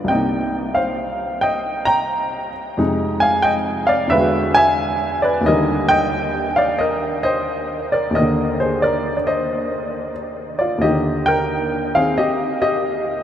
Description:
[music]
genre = solo jazz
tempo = 89 BPM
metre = 4/4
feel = swing 66% on 8ths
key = Eb major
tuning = A4 = 441 Hz
[part]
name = warm baby grand piano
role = solo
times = 0.0-13.2 s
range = C2 to Bb5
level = -16 LUFS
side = equal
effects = none
[sound]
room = wet huge ambient reverb, RT60 7.5 s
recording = in a vast, echoing space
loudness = -16 LUFS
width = side -10 dB against mid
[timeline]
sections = 0.0-10.8 A section; 10.8-13.2 A section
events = none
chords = 0.1 Cm7; 2.8 Fm7; 4.1 E9; 5.5 Ebmaj7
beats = | 0.08 0.76 1.43 2.10 | 2.77 3.45 4.12 4.79 | 5.46 6.13 6.80 7.48 | 8.15 8.82 9.49 10.16 | 10.83 11.50 12.17 12.84

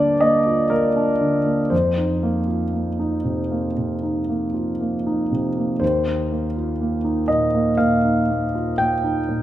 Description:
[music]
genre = classical, impressionist solo piano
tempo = 60 BPM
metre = 4/4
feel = rubato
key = Eb major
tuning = A4 = 437 Hz
[part]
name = clear concert grand piano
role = solo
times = 0.0-9.4 s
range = Eb2 to G5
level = -18 LUFS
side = equal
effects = none
[sound]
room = moderate recital hall reverb, RT60 1.4 s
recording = none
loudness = -18 LUFS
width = side -13 dB against mid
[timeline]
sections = 0.0-9.4 A section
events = none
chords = 0.0 Gm7; 1.7 F7sus4; 5.8 Eb69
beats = 0.72 | 1.72 2.74 3.78 4.80 | 5.82 6.80 7.80 8.80

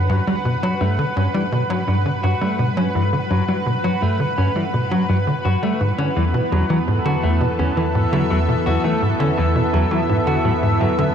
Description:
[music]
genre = ambient, sequencer-driven space music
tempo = 84 BPM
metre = 4/4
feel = straight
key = unclear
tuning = A4 = 442 Hz
[part]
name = lush unison pad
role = sustained chords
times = 0.0-11.1 s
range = E3 to E5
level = -22 LUFS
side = equal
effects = chorus
[part]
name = tight sequencer bass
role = riff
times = 0.0-11.1 s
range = E2 to G3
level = -19 LUFS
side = equal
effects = analog chorus, analog delay
[part]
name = analog drone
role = bass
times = 0.3-11.1 s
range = E2 to G2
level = -30 LUFS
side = equal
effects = none
[part]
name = bubbling stepped-filter texture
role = texture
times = 0.0-11.1 s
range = F#5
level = -32 LUFS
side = right 3 dB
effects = chorus, built-in reverb
[part]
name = clean electric guitar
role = arpeggios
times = 0.1-11.1 s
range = F#2 to F#4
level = -25 LUFS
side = left 2 dB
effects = auto-pan, analog delay
[sound]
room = wet huge ambient reverb, RT60 7.6 s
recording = cassette tape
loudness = -17 LUFS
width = side -8 dB against mid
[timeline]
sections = 0.0-11.1 A section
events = none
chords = 0.1 G; 5.8 Esus4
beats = | 0.09 0.81 1.52 2.23 | 2.95 3.66 4.38 5.09 | 5.81 6.52 7.23 7.95 | 8.66 9.38 10.09 10.81

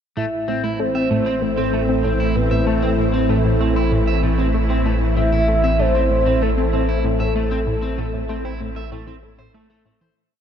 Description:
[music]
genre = ambient, sequencer-driven space music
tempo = 96 BPM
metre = 4/4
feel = straight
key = A minor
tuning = A4 = 440 Hz
[part]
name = soft octave-layered synth lead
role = melody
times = 0.2-9.5 s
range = A4 to E5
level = -23 LUFS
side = equal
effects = chorus, tremolo, shimmer reverb, tape echo
[part]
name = lush unison pad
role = sustained chords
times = 0.2-10.2 s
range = A2 to C4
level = -24 LUFS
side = right 1 dB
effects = chorus, shimmer reverb
[part]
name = electric guitar at the edge of break-up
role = arpeggios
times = 0.2-10.1 s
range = A3 to E5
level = -27 LUFS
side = moving between left 3 dB and right 6 dB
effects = auto-pan, shimmer reverb, tape echo
[part]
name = tight sequenced synth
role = riff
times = 0.2-10.1 s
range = A2 to C4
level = -26 LUFS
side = left 1 dB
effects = chorus, shimmer reverb, tape echo
[part]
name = round analog bass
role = bass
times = 0.2-10.1 s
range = A1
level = -22 LUFS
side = equal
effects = none
[part]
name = wind-like tuned noise texture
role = texture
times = 1.0-10.2 s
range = E5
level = -36 LUFS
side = right 1 dB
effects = built-in reverb, shimmer reverb
[sound]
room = wet huge ambient reverb, RT60 7.9 s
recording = dark, warm production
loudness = -17 LUFS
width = side -8 dB against mid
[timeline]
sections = 0.2-10.2 A section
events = fade-out 6.8-10.2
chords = 0.2 Am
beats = | 0.17 0.80 1.42 2.04 | 2.67 3.29 3.92 4.54 | 5.17 5.79 6.42 7.04 | 7.67 8.29 8.92 9.54

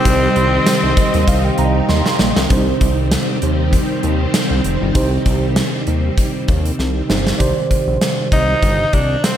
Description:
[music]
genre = 1980s-style pop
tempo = 98 BPM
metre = 4/4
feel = swing 55% on 16ths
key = C minor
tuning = A4 = 440 Hz
[part]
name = raspy tenor saxophone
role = melody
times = 0.0-1.9, 8.3-9.4 s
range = C4 to Eb4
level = -18 LUFS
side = equal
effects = tape echo
[part]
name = tine electric piano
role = accompaniment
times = 0.0-9.4 s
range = C3 to C6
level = -20 LUFS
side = right 4 dB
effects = ensemble chorus
[part]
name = string machine, violins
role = sustained chords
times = 0.0-7.4 s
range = Eb3 to Eb4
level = -21 LUFS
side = equal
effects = ensemble chorus
[part]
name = chorused synth bass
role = bass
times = 0.1-9.2 s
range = F1 to Eb2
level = -18 LUFS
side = equal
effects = none
[part]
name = gated 80s drum kit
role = drums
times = 0.1-9.4 s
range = hi-hat, kick drum, snare drum, tambourine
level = -18 LUFS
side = equal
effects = none
[sound]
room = moderate lush hall reverb, RT60 2.1 s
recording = dreamy mix soaked in reverb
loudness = -13 LUFS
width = side -10 dB against mid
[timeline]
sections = 0.0-2.5 A section; 2.5-7.4 B section; 7.4-9.4 C section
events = tine electric piano fill 0.7-2.5; drum fill 1.9-2.5, 6.8-7.4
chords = 0.0 Cm; 7.4 Cmadd9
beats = | 0.05 0.67 1.28 1.89 | 2.50 3.12 3.73 4.34 | 4.95 5.56 6.18 6.79 | 7.40 8.01 8.63 9.24

